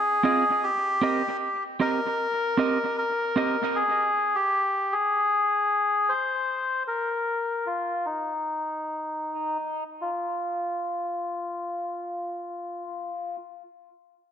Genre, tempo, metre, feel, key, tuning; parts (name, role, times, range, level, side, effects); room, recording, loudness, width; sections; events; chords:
reggae; 77 BPM; 4/4; straight; A4 = 440 Hz
melodica; melody; 0.0-13.4 s; Eb4 to C5; -25 LUFS; left 1 dB; low-pass filter, tape echo
clean electric guitar; accompaniment; 0.2-3.6 s; C4 to Eb5; -27 LUFS; right 5 dB; low-pass filter, tape echo
wet spring reverb, RT60 1.6 s, studio ambience; echo-heavy mix; -24 LUFS; side -8 dB against mid
0.0-10.0 A section; 10.0-13.1 B section
filter sweep 0.0-10.0
0.0 Fm7; 0.6 Cm7; 3.7 N.C.